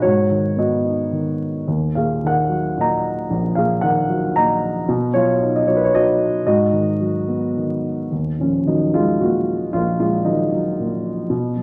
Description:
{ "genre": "classical, lyrical solo piano", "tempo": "113 BPM", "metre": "3/4", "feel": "rubato", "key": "Eb minor", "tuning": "A4 = 436 Hz", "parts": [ { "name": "dark concert grand piano", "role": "solo", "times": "0.0-11.6 s", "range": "Bb1 to Bb5", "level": "-19 LUFS", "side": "equal", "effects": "none" } ], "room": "wet recital hall reverb, RT60 1.6 s", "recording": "vinyl crackle", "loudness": "-19 LUFS", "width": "mono", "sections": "0.0-8.1 A section; 8.1-11.6 A section", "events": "none", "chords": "0.0 Abm7; 1.7 Ebm; 4.9 B; 6.5 Abm7; 8.1 Ebm", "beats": "| 0.03 0.56 1.11 | 1.68 2.23 2.77 | 3.30 3.83 4.35 | 4.88 5.40 5.92 | 6.45 7.00 7.56 | 8.12 8.66 9.20 | 9.73 10.26 10.79 | 11.31" }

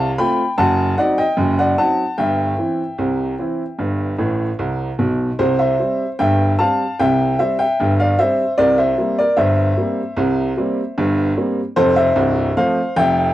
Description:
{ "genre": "ragtime piano", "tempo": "75 BPM", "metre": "2/4", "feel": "straight", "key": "C major", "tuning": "A4 = 444 Hz", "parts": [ { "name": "clear upright piano", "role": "solo", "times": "0.0-13.3 s", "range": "C1 to B5", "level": "-15 LUFS", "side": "equal", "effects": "cassette tape" } ], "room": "light reverb", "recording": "home recording on cassette", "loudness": "-15 LUFS", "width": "side -14 dB against mid", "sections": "0.0-13.3 A section", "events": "upright piano fill 4.2-5.4", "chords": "0.0 F; 0.6 F#dim7; 2.2 C/G; 3.8 G; 5.4 C; 8.6 C7; 11.8 F", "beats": "| 0.58 1.38 | 2.18 2.98 | 3.79 4.59 | 5.39 6.19 | 6.99 7.79 | 8.58 9.37 | 10.17 10.97 | 11.76 12.56" }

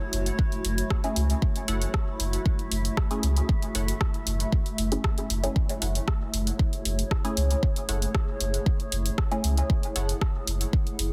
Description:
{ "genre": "dub techno", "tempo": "116 BPM", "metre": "4/4", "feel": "straight", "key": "F# minor", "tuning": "A4 = 437 Hz", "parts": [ { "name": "granular cloud pad", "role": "sustained chords", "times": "0.0-11.1 s", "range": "A3 to F#5", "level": "-36 LUFS", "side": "equal", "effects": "built-in reverb, sidechain pumping" }, { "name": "pure sine sub bass", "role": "bass", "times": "0.1-11.1 s", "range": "F#1 to C#2", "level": "-29 LUFS", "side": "equal", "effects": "sidechain pumping" }, { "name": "deep house drum kit", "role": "drums", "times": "0.1-11.1 s", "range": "hi-hat, rim click", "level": "-35 LUFS", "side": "equal", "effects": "soft clipping on snare" }, { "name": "electronic kick drum", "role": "drums", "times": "0.4-10.8 s", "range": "none", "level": "-28 LUFS", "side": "equal", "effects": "none" }, { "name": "filtered dub chord stab", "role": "stabs", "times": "1.0-9.6 s", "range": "A3 to G#4", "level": "-36 LUFS", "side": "equal", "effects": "chorus, phaser, sidechain pumping, dub echo" }, { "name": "filtered dub chord stab", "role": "riff", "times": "1.7-10.2 s", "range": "E4 to F#5", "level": "-44 LUFS", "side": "equal", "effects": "phaser, analog chorus, sidechain pumping, dub echo" } ], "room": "little or no reverb", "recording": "dense, heavily limited modern master", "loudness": "-26 LUFS", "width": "mono", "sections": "0.0-11.1 A section", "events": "none", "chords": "0.0 F#m7", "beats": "0.39 0.90 | 1.42 1.94 2.46 2.97 | 3.49 4.01 4.53 5.04 | 5.56 6.08 6.59 7.11 | 7.63 8.15 8.66 9.18 | 9.70 10.21 10.73" }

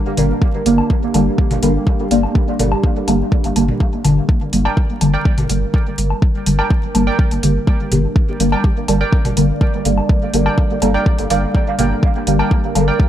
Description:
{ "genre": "dub techno", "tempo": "124 BPM", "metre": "4/4", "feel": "straight", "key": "G minor", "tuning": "A4 = 441 Hz", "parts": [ { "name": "deep dark ambient pad", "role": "sustained chords", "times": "0.0-13.1 s", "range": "G3 to D5", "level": "-25 LUFS", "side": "right 1 dB", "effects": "chorus, built-in reverb, sidechain pumping" }, { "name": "deep mellow chord stab", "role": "stabs", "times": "0.2-12.8 s", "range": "D3 to Bb3", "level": "-18 LUFS", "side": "equal", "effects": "chorus, phaser, sidechain pumping, dub echo" }, { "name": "round analog bass", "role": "bass", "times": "0.2-12.9 s", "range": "G1", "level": "-20 LUFS", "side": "equal", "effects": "sidechain pumping" }, { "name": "electronic hi-hat", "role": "drums", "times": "0.2-12.9 s", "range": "none", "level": "-25 LUFS", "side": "equal", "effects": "none" }, { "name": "electronic toms and woodblock", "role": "percussion", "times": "0.2-12.9 s", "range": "none", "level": "-26 LUFS", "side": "left 2 dB", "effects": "sidechain pumping on toms, sidechain pumping on perc, dub echo" }, { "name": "electronic kick drum", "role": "drums", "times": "0.4-13.1 s", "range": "none", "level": "-15 LUFS", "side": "equal", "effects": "none" }, { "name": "wavetable chord stab", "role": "riff", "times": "4.7-13.0 s", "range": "Bb4 to G5", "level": "-25 LUFS", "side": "right 3 dB", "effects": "sidechain pumping, dub echo" } ], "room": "moderate lush hall reverb, RT60 1.9 s", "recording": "vinyl crackle", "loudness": "-13 LUFS", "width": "side -11 dB against mid", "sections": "0.0-13.1 A section", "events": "none", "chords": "0.0 Gm", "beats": "| 0.42 0.90 1.38 1.87 | 2.35 2.84 3.32 3.80 | 4.29 4.77 5.25 5.74 | 6.22 6.71 7.19 7.67 | 8.16 8.64 9.13 9.61 | 10.09 10.58 11.06 11.54 | 12.03 12.51 13.00" }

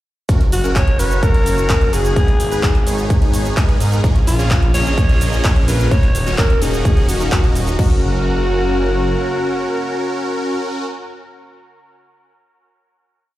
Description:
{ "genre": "EDM, festival progressive house", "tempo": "128 BPM", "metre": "4/4", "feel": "straight", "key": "F# major", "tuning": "A4 = 436 Hz", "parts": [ { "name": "lush unison pad", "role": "sustained chords", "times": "0.3-10.9 s", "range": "C#3 to G#4", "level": "-28 LUFS", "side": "equal", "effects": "chorus, sidechain pumping" }, { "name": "supersaw chords", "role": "riff", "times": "0.3-10.9 s", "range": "A#3 to D#5", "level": "-22 LUFS", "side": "equal", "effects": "sidechain pumping, dub echo" }, { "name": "detuned saw bass", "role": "bass", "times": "0.3-9.2 s", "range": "D#1 to G#2", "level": "-19 LUFS", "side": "equal", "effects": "sidechain pumping" }, { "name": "big-room dance drum kit", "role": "drums", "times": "0.3-7.9 s", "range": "crash cymbal, handclaps, hi-hat, shaker", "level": "-25 LUFS", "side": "equal", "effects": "none" }, { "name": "electronic kick drum", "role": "drums", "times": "0.3-7.9 s", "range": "none", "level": "-15 LUFS", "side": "equal", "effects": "none" }, { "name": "growling alto saxophone", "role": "melody", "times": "0.5-10.9 s", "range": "E#4 to C#5", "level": "-22 LUFS", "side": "left 1 dB", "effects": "dub echo" } ], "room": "digital ambience", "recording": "played on a big sound system in a bare room, large studio reverb", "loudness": "-14 LUFS", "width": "side -15 dB against mid", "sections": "0.3-7.8 drop; 7.8-11.5 final chord", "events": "drop 0.3-7.8", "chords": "0.3 F#; 2.2 G#m; 4.0 A#m7; 5.9 D#m7; 7.8 F#", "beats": "| 0.29 0.76 1.23 1.70 | 2.16 2.63 3.10 3.57 | 4.04 4.51 4.98 5.45 | 5.91 6.38 6.85 7.32 | 7.79 8.26 8.73 9.20 | 9.66 10.13 10.60" }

